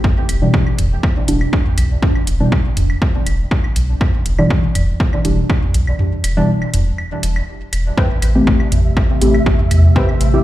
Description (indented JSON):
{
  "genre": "dub techno",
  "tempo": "121 BPM",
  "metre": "4/4",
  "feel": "straight",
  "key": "unclear",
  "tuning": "A4 = 439 Hz",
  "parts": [
    { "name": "electronic kick drum", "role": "drums", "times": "0.0-10.1 s", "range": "none", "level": "-16 LUFS", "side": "equal", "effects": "overdrive, studio ambience" },
    { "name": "electronic toms and claves", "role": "percussion", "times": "0.0-10.2 s", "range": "none", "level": "-22 LUFS", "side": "right 1 dB", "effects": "overdrive, sidechain pumping on toms, studio ambience, sidechain pumping on perc, dub echo" },
    { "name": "pure sine sub bass", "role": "bass", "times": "0.3-10.4 s", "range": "E1 to E2", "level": "-15 LUFS", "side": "equal", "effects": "sidechain pumping" },
    { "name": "electronic hi-hat", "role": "drums", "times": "0.3-10.3 s", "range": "none", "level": "-27 LUFS", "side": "right 1 dB", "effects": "overdrive, studio ambience" },
    { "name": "deep mellow chord stab", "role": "stabs", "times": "0.4-10.4 s", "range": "B2 to G4", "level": "-19 LUFS", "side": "equal", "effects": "chorus, phaser, sidechain pumping, dub echo" },
    { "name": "warbly tape-like pad", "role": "sustained chords", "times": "8.5-10.4 s", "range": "C3 to G4", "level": "-22 LUFS", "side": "equal", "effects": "chorus, built-in reverb, sidechain pumping" },
    { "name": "warbly dusty pluck", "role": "riff", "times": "8.0-10.2 s", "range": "B4 to G5", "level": "-26 LUFS", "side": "left 2 dB", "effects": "chorus, sidechain pumping, dub echo" },
    { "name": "flickering grainy texture", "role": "texture", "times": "8.4-10.4 s", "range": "E5", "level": "-28 LUFS", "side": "right 1 dB", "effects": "built-in reverb, sidechain pumping" }
  ],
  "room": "light reverb, digital ambience",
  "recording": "played on a big sound system in a bare room, large studio reverb",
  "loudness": "-13 LUFS",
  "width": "side -14 dB against mid",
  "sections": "0.0-10.4 A section",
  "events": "break 6.0-8.0",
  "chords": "0.0 Em7; 8.0 Am7"
}